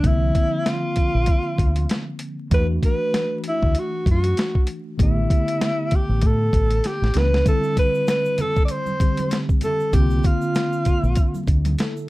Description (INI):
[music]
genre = hip hop, jazz-hop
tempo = 97 BPM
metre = 4/4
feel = swing 58% on 16ths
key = unclear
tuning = A4 = 440 Hz
[part]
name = breathy alto saxophone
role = melody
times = 0.0-11.5 s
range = E4 to D5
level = -23 LUFS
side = equal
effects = none
[part]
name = mellow tine electric piano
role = accompaniment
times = 0.0-12.1 s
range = D3 to A4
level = -26 LUFS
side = equal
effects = medium stereo tremolo
[part]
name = deep dub fingered electric bass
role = bass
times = 0.0-11.7 s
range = A1 to A2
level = -20 LUFS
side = equal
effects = none
[part]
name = boom bap sampler-style drum kit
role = drums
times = 0.0-12.0 s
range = hi-hat, kick drum, snare drum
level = -20 LUFS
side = equal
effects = none
[part]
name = egg shaker and congas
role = percussion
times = 7.5-12.1 s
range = none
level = -33 LUFS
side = right 3 dB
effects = none
[sound]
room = moderate studio ambience, RT60 0.5 s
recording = dark, warm production, vinyl crackle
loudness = -18 LUFS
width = side -19 dB against mid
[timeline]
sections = 0.0-12.1 A section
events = drum fill 6.8-7.5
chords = 0.0 C9sus4; 2.5 E9sus4; 5.0 A9sus4; 7.5 D9sus4; 9.9 C9sus4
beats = | 0.04 0.66 1.28 1.90 | 2.52 3.13 3.75 4.37 | 4.99 5.61 6.23 6.84 | 7.46 8.08 8.70 9.32 | 9.94 10.56 11.18 11.79